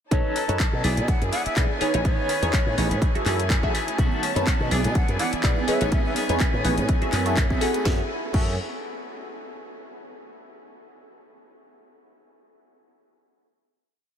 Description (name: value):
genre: filtered disco house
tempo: 124 BPM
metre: 4/4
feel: swing 54% on 16ths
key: F# dorian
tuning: A4 = 440 Hz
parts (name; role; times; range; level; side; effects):
- funky polysynth comp; accompaniment; 0.1-8.5 s; D#4 to F#5; -29 LUFS; equal; chorus, phaser, sidechain pumping
- dark studio string section; sustained chords; 0.1-8.1 s; A3 to A5; -32 LUFS; left 2 dB; sidechain pumping
- electric guitar with an envelope filter; riff; 0.1-8.5 s; D#3 to A4; -32 LUFS; right 1 dB; tremolo, sidechain pumping
- slap bass with an envelope filter; bass; 0.1-8.6 s; A1 to B2; -26 LUFS; equal; sidechain pumping
- electronic kick drum; drums; 0.1-8.4 s; none; -23 LUFS; equal; none
- house drum kit; drums; 0.1-8.4 s; crash cymbal, handclaps, hi-hat, snare drum; -31 LUFS; left 1 dB; sidechain pumping on hats, sidechain pumping on cymbals
- breathy jazz flute; melody; 1.1-6.1 s; C#5 to F#5; -34 LUFS; right 1 dB; vintage 12-bit sampler grit, sidechain pumping, tape echo
- tambourine and congas; percussion; 4.0-7.8 s; none; -33 LUFS; right 8 dB; sidechain pumping on perc
room: moderate huge ambient reverb, RT60 9.0 s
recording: dreamy mix soaked in reverb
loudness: -20 LUFS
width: side -9 dB against mid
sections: 0.1-7.9 drop; 7.9-9.8 final chord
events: drop 0.1-7.9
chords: 0.1 B9; 0.8 E7/B; 1.8 Amaj9#11; 3.0 F#m9; 4.0 B9; 4.7 E7/B; 5.7 Amaj9#11; 6.9 F#m9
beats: | 0.12 0.60 1.08 1.57 | 2.05 2.53 3.02 3.50 | 3.99 4.47 4.95 5.44 | 5.92 6.41 6.89 7.37 | 7.86 8.34